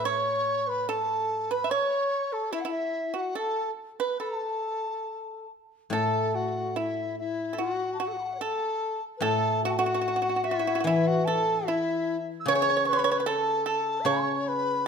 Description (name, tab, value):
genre	chinese traditional, Chinese chamber ensemble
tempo	73 BPM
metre	4/4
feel	rubato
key	A gong mode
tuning	A4 = 440 Hz
part	mellow hollow large dizi	melody	0.0-14.9 s	E5 to E6	-29 LUFS	equal	none
part	large dizi	second line	0.0-14.9 s	E4 to C#6	-31 LUFS	left 4 dB	none
part	pipa	second line	0.0-14.8 s	E4 to E5	-30 LUFS	right 8 dB	none
part	guzheng	accompaniment	0.0-14.9 s	A2 to E3	-32 LUFS	left 2 dB	none
room	moderate recital hall reverb, RT60 1.3 s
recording	none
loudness	-25 LUFS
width	side -6 dB against mid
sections	0.0-5.9 A section; 5.9-14.9 B section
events	none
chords	none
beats	0.07 0.89 1.72 | 2.53 3.36 4.20 5.06 | 5.92 6.76 7.60 8.42 | 9.23 10.05 10.87 11.68 | 12.48 13.28 14.08